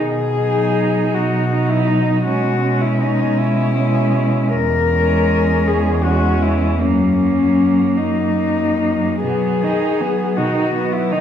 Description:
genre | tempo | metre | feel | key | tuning
classical, lyrical piece for cello ensemble | 53 BPM (dotted quarters) | 6/8 | rubato | B major | A4 = 440 Hz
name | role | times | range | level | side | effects
muted cello | melody | 0.0-11.2 s | C#4 to A#4 | -19 LUFS | left 5 dB | none
muted cello | bass | 0.0-11.2 s | E2 to B2 | -20 LUFS | right 2 dB | none
muted cello | second line | 0.4-11.2 s | A#3 to D#4 | -21 LUFS | right 5 dB | none
muted cello | accompaniment | 0.4-11.2 s | D#3 to G#3 | -22 LUFS | left 2 dB | none
room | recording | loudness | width
wet recital hall reverb, RT60 1.5 s | heard from further back in the room, nothing above 10.6 kHz | -14 LUFS | side -9 dB against mid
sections
0.0-11.2 A section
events
none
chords
0.0 B; 2.3 C#m7/B; 4.5 C#m/E; 6.8 F#; 9.2 B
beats
1.16 | 2.27 3.38 | 4.54 5.67 | 6.80 7.98 | 9.23 10.38

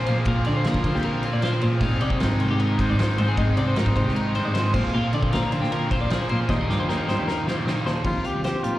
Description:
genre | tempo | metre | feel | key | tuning
math rock and midwest emo | 154 BPM | 4/4 | straight | Eb major | A4 = 440 Hz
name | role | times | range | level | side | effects
twelve-string electric guitar | accompaniment | 0.0-8.8 s | Eb2 to Ab4 | -28 LUFS | right 2 dB | none
twelve-string electric guitar | arpeggios | 0.0-8.8 s | G4 to F5 | -30 LUFS | left 4 dB | slapback echo, analog delay
overdriven electric guitar | riff | 0.0-8.1 s | Eb2 to F4 | -28 LUFS | equal | slapback echo
dark cello | bass | 0.1-8.7 s | C2 to D3 | -24 LUFS | equal | none
loose indie drum kit | drums | 0.1-8.7 s | crash cymbal, hi-hat, kick drum, ride cymbal, snare drum | -28 LUFS | equal | none
warm trumpet | melody | 8.0-8.8 s | F4 to G4 | -27 LUFS | left 2 dB | slapback echo
room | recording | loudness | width
little or no reverb | live gig heard through the venue's PA, recital hall reverb | -20 LUFS | side -15 dB against mid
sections
0.0-8.1 A section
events
drum fill 6.5-8.1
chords
0.0 Bb9; 1.8 Abmaj7; 4.7 Bb9; 6.5 Ebmaj7; 8.1 Eb69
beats
| 0.26 0.65 1.04 1.43 | 1.82 2.21 2.60 2.98 | 3.37 3.76 4.15 4.54 | 4.93 5.32 5.71 6.10 | 6.49 6.88 7.27 7.67 | 8.06 8.45

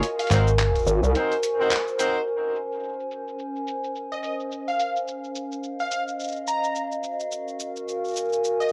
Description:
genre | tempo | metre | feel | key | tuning
glitch hop | 107 BPM | 4/4 | swing 59% on 16ths | Bb minor | A4 = 440 Hz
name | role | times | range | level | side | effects
boom bap sampler-style drum kit | drums | 0.0-8.7 s | handclaps, hi-hat, shaker | -34 LUFS | equal | low-pass filter on hats, cassette tape, low-pass filter on perc, low-pass filter on snare
warbly tape-like pad | texture | 0.0-8.7 s | Db4 to Ab5 | -29 LUFS | equal | chorus, built-in reverb
plucky unison lead | melody | 0.2-0.4, 4.1-8.7 s | Eb5 to Bb5 | -31 LUFS | equal | lush chorus, cassette tape, analog delay
clear horn section | stabs | 0.3-2.2 s | C4 to C5 | -30 LUFS | equal | analog delay
slap-like FM bass | bass | 0.3-0.8 s | Ab1 | -22 LUFS | equal | none
gritty driven synth bass | bass | 0.9-1.1 s | Ab1 to C2 | -23 LUFS | equal | tube saturation
room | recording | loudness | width
wet studio reverb, RT60 0.5 s | home recording on cassette | -26 LUFS | mono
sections
0.0-2.3 A section; 2.3-8.7 B section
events
band accent 1.7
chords
0.0 Ab9; 2.3 Bbm9; 4.5 Dbmaj9; 6.8 Gbmaj9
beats
| 0.03 0.59 1.15 1.71 | 2.27 2.83 3.39 3.95 | 4.51 5.08 5.64 6.20 | 6.76 7.32 7.88 8.44

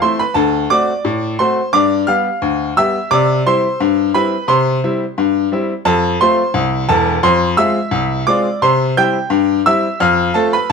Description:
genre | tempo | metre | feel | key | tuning
ragtime piano | 87 BPM | 2/4 | straight | C major | A4 = 440 Hz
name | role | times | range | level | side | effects
bright upright piano | solo | 0.0-10.7 s | E1 to G6 | -13 LUFS | left 1 dB | none
room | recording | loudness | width
moderate studio reverb, RT60 0.7 s | none | -13 LUFS | side -5 dB against mid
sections
0.0-10.7 A section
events
none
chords
0.4 D7; 1.7 G7; 3.1 C; 5.9 F; 7.2 Fm; 8.6 C; 10.0 F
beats
| 0.37 1.06 | 1.75 2.43 | 3.12 3.81 | 4.49 5.18 | 5.87 6.55 | 7.24 7.93 | 8.62 9.31 | 10.00 10.69

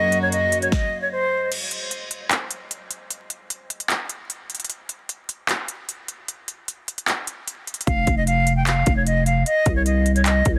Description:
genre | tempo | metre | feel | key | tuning
hip hop, trap | 151 BPM | 4/4 | half-time | unclear | A4 = 440 Hz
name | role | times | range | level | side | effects
silver concert flute | melody | 0.0-1.5, 7.9-10.6 s | C5 to G5 | -24 LUFS | equal | delay
dark symphonic string section | sustained chords | 0.0-0.7 s | Gb2 to Gb4 | -30 LUFS | equal | none
trap drum kit | drums | 0.1-10.5 s | crash cymbal, handclaps, hi-hat, kick drum, snare drum | -26 LUFS | equal | overdrive
growling 808-style bass | bass | 7.9-10.6 s | F1 to C2 | -22 LUFS | equal | none
room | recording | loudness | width
little or no reverb | dense, heavily limited modern master, vinyl crackle | -23 LUFS | mono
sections
0.0-1.5 A section; 1.5-10.6 B section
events
stop 0.7-1.5; break 1.5-7.9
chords
0.0 Gb; 1.5 N.C.; 9.5 Cm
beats
0.32 0.72 1.12 | 1.52 1.91 2.31 2.71 | 3.11 3.50 3.90 4.30 | 4.70 5.09 5.49 5.89 | 6.28 6.68 7.08 7.48 | 7.87 8.27 8.67 9.07 | 9.46 9.86 10.26

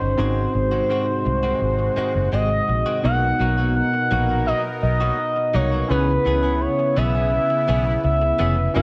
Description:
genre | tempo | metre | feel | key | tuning
pop | 84 BPM | 4/4 | straight | C# dorian | A4 = 440 Hz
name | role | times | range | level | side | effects
expressive portamento lead | melody | 0.0-8.8 s | B4 to F#5 | -24 LUFS | equal | chorus
warm analog keys | accompaniment | 0.0-8.8 s | G#2 to B5 | -29 LUFS | equal | chorus
sweeping resonant pad | sustained chords | 0.0-8.8 s | B#2 to A#4 | -31 LUFS | equal | chorus
direct-recorded clean electric guitar | riff | 0.0-8.8 s | D#3 to G#4 | -33 LUFS | equal | subtle chorus
vintage muted fingered electric bass | bass | 0.0-8.8 s | E#1 to C#2 | -25 LUFS | equal | none
room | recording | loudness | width
moderate lush hall reverb, RT60 2.2 s | none | -20 LUFS | mono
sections
0.0-3.0 A section; 3.0-8.8 B section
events
none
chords
0.2 G#7; 3.0 Bmaj7; 5.9 C#m7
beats
| 0.19 0.90 1.61 2.33 | 3.04 3.76 4.47 5.19 | 5.90 6.62 7.33 8.04 | 8.76

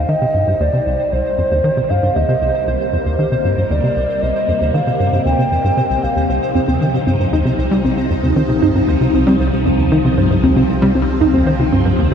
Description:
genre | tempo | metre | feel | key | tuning
ambient, sequencer-driven space music | 116 BPM | 4/4 | straight | C minor | A4 = 444 Hz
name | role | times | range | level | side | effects
mellow hollow wooden flute | melody | 0.0-6.3 s | C5 to G5 | -19 LUFS | equal | ping-pong delay
phased string machine | sustained chords | 0.0-12.1 s | C3 to Eb4 | -20 LUFS | left 1 dB | ensemble chorus, phaser
tight sequencer bass | riff | 0.0-12.1 s | C2 to G3 | -17 LUFS | equal | ping-pong delay
analog drone | bass | 0.2-12.1 s | C2 | -25 LUFS | right 1 dB | chorus
pulsing gated texture | texture | 0.0-12.1 s | C5 | -26 LUFS | right 2 dB | chorus, built-in reverb
warbly dusty pluck | arpeggios | 6.3-12.1 s | C3 to C5 | -18 LUFS | moving between left 4 dB and right 4 dB | chorus, auto-pan, ping-pong delay
room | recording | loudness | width
wet huge ambient reverb, RT60 7.7 s | cassette tape | -13 LUFS | side -7 dB against mid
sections
0.0-12.1 A section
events
fade-in on string machine 0.0-12.1; fade-in on synth drone 0.0-12.1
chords
0.0 Cm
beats
| 0.09 0.60 1.12 1.64 | 2.16 2.67 3.19 3.71 | 4.23 4.74 5.26 5.78 | 6.29 6.81 7.33 7.85 | 8.36 8.88 9.40 9.92 | 10.43 10.95 11.47 11.98

